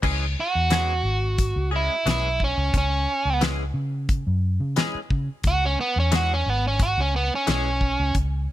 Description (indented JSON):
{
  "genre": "straight-eighth soul blues",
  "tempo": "89 BPM",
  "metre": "4/4",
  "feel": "swing 55% on 16ths",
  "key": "C# minor",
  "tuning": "A4 = 440 Hz",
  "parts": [
    { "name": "direct-recorded clean electric guitar", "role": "stabs", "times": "0.0-7.7 s", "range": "E3 to G#4", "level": "-30 LUFS", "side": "left 4 dB", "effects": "wide subtle chorus" },
    { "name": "vintage muted fingered electric bass", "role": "bass", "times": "0.0-8.5 s", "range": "G#1 to C#3", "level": "-24 LUFS", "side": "equal", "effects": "none" },
    { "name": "damped 70s drum kit", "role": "drums", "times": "0.0-8.3 s", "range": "crash cymbal, hi-hat, kick drum, snare drum", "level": "-24 LUFS", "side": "left 1 dB", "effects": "none" },
    { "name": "biting overdriven guitar", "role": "melody", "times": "0.4-8.1 s", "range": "B3 to F#4", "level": "-24 LUFS", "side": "right 2 dB", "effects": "none" }
  ],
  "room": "little or no reverb",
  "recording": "none",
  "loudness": "-21 LUFS",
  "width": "side -14 dB against mid",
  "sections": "0.0-8.5 A section",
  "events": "overdriven electric guitar solo 0.0-8.5",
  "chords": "0.0 C#m",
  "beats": "| 0.03 0.70 1.38 2.06 | 2.73 3.41 4.09 4.76 | 5.44 6.12 6.79 7.47 | 8.15"
}